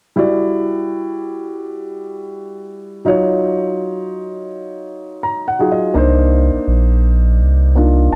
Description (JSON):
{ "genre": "hip hop", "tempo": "83 BPM", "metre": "4/4", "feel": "swing 60% on 16ths", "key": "unclear", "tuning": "A4 = 444 Hz", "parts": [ { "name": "dark grand piano", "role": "accompaniment", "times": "0.2-8.2 s", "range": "F#3 to A#5", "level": "-20 LUFS", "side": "equal", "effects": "none" }, { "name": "warm sub bass", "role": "bass", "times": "6.0-8.2 s", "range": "Eb1 to C2", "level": "-14 LUFS", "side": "equal", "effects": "none" } ], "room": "light reverb", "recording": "dark, warm production", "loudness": "-16 LUFS", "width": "mono", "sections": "0.2-8.2 A section", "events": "grand piano fill 4.9-6.0", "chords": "0.2 Em9; 3.1 D#m9; 6.0 Cm9" }